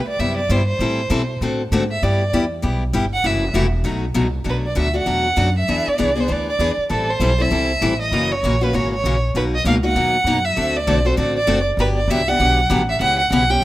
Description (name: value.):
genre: acoustic string swing (jazz manouche).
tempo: 197 BPM.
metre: 4/4.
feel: swing 59% on 8ths.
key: unclear.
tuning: A4 = 440 Hz.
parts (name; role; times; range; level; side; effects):
warm violin; melody; 0.0-13.6 s; A4 to G5; -20 LUFS; right 1 dB; none.
upright bass; bass; 0.0-13.6 s; E1 to B2; -22 LUFS; equal; none.
picked steel-string acoustic guitar; accompaniment; 0.2-13.6 s; B2 to A4; -21 LUFS; left 2 dB; none.
room: light reverb, small room ambience.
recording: rough home demo mix.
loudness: -16 LUFS.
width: side -16 dB against mid.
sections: 0.0-4.5 A section; 4.5-13.6 B section.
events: violin solo 0.0-4.5.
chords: 0.0 Cmaj9; 0.8 Am7; 1.4 D7; 2.0 G6; 3.2 F#m7b5; 3.9 B7; 4.5 Bm7; 5.7 E7; 6.9 Am7; 8.1 F#7; 9.3 Bmaj7; 10.6 D7; 11.8 Gmaj9; 13.0 C#m7b5.